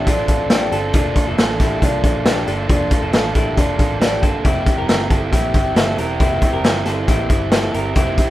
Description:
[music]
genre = jangly indie pop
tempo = 137 BPM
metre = 4/4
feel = straight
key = unclear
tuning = A4 = 436 Hz
[part]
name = crunchy overdriven guitar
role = accompaniment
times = 0.0-8.3 s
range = F3 to A4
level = -22 LUFS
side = right 4 dB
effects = none
[part]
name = electric guitar through a small old amp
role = arpeggios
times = 0.0-8.3 s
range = D4 to Bb4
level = -22 LUFS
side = left 2 dB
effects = digital delay
[part]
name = vintage muted picked electric bass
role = bass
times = 0.0-8.1 s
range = E1 to C2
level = -25 LUFS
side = equal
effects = none
[part]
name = raw garage drum kit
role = drums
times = 0.1-8.3 s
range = hi-hat, kick drum, snare drum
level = -17 LUFS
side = equal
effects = none
[sound]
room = light reverb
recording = rough home demo mix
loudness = -14 LUFS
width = side -15 dB against mid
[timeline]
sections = 0.0-8.3 A section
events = none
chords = 0.0 F6; 0.9 Bbmaj7/F; 4.4 C7

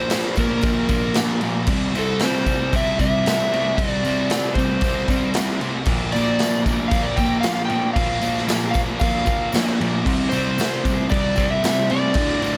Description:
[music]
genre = garage rock duo or trio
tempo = 115 BPM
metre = 4/4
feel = straight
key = unclear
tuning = A4 = 439 Hz
[part]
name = overdriven slide guitar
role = melody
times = 0.0-12.6 s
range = A4 to G5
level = -26 LUFS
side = equal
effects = none
[part]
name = crunchy overdriven guitar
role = riff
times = 0.0-12.6 s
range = D2 to C4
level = -24 LUFS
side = equal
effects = none
[part]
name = raw garage drum kit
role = drums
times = 0.1-12.5 s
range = crash cymbal, kick drum, snare drum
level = -25 LUFS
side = equal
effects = none
[part]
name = tambourine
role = percussion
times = 0.1-12.6 s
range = none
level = -43 LUFS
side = equal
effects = none
[sound]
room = light reverb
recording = none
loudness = -20 LUFS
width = mono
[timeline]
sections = 0.0-12.6 A section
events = none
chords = 0.0 Bb5; 1.7 C; 5.9 Bb5; 10.1 C5

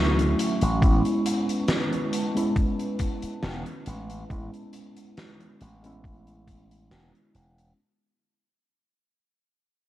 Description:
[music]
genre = vaporwave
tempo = 69 BPM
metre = 4/4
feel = swing 54% on 16ths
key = A major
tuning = A4 = 440 Hz
[part]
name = mellow tine electric piano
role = accompaniment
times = 0.0-7.8 s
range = F#3 to E4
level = -28 LUFS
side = equal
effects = medium stereo tremolo, wide subtle chorus, analog delay
[part]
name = warbly tape-like pad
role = sustained chords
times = 0.0-7.7 s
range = G#3 to C#6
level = -35 LUFS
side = equal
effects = chorus, built-in reverb, phaser, vintage 12-bit sampler grit
[part]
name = slap bass with an envelope filter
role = bass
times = 0.0-7.7 s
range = E1 to D2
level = -27 LUFS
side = equal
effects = low-pass filter
[part]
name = huge arena drum kit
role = drums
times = 0.2-7.7 s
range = hi-hat, snare drum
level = -30 LUFS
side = left 1 dB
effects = gated reverb
[part]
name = electronic kick drum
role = drums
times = 0.8-6.7 s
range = none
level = -23 LUFS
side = equal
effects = none
[sound]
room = light reverb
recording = cassette tape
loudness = -23 LUFS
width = side -14 dB against mid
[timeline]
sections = 0.0-7.8 A section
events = fade-out 0.0-7.8; filter sweep on slap bass 0.0-7.8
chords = 0.0 Dmaj9; 0.8 Amaj9

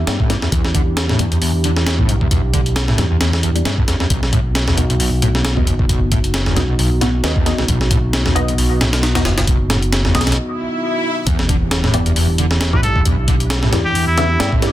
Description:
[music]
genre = breakbeat, breaks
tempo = 134 BPM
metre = 4/4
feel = swing 56% on 16ths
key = unclear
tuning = A4 = 440 Hz
[part]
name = dark analog pad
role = sustained chords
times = 0.0-14.7 s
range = B3 to G4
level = -25 LUFS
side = right 1 dB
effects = chorus, sidechain pumping
[part]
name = fingered electric bass with an envelope filter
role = bass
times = 0.0-14.5 s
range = F#1 to G2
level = -18 LUFS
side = equal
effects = none
[part]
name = filtered dub chord stab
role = stabs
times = 0.1-14.7 s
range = B3 to F#5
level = -25 LUFS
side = left 1 dB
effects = phaser, lush chorus, dub echo
[part]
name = breakbeat sampler-style drum kit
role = drums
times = 0.1-14.7 s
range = hi-hat, kick drum, snare drum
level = -18 LUFS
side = equal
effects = small room ambience
[part]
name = screaming distorted acid line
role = riff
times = 0.2-14.7 s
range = B1 to E3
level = -20 LUFS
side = equal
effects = distortion, ensemble chorus
[part]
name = swell and impact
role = sound effects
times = 10.5-13.1 s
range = none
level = -23 LUFS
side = equal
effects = none
[part]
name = trumpet with straight mute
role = melody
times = 12.7-14.5 s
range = E4 to B4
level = -20 LUFS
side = equal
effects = small speaker sound, vintage 12-bit sampler grit, dub echo
[sound]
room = moderate small room reverb, RT60 0.5 s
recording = dense, heavily limited modern master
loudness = -14 LUFS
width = side -14 dB against mid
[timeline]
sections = 0.0-11.3 A section; 11.3-14.7 B section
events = filter sweep on synth stab 0.0-11.3; break 10.4-11.3; swell 10.5-11.3; drop 11.3-14.7; impact 11.3-13.1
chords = 0.0 Em7; 4.1 B; 11.3 Em7

